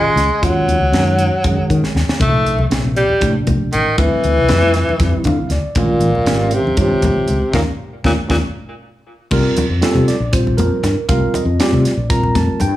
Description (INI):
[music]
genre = electric jazz fusion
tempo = 236 BPM (eighths)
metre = 7/8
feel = straight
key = unclear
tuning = A4 = 440 Hz
[part]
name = clear tenor saxophone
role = melody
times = 0.0-8.4 s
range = Bb2 to A3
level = -17 LUFS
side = equal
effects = none
[part]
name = tine electric piano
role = accompaniment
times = 0.0-12.8 s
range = Bb2 to Bb5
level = -20 LUFS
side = right 2 dB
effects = wide subtle chorus
[part]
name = fretless electric bass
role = bass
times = 0.0-12.8 s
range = Ab1 to Eb3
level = -17 LUFS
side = left 1 dB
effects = analog chorus
[part]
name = crisp fusion drum kit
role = drums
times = 0.2-12.7 s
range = crash cymbal, hi-hat, kick drum, snare drum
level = -21 LUFS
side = equal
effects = none
[part]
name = congas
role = percussion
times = 2.2-12.7 s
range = none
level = -24 LUFS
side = left 2 dB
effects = none
[sound]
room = light reverb, small room ambience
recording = small room reverb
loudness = -13 LUFS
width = side -14 dB against mid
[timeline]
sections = 0.0-9.3 A section; 9.3-12.8 B section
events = drum fill 1.8-2.2, 7.8-9.3; tine electric piano fill 5.0-5.8; band accent 7.5-9.3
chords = 0.4 Ebm9; 2.2 Cm9; 4.0 Dm9; 5.8 Bbm9; 7.5 Eb5; 8.6 N.C.; 9.3 C13sus4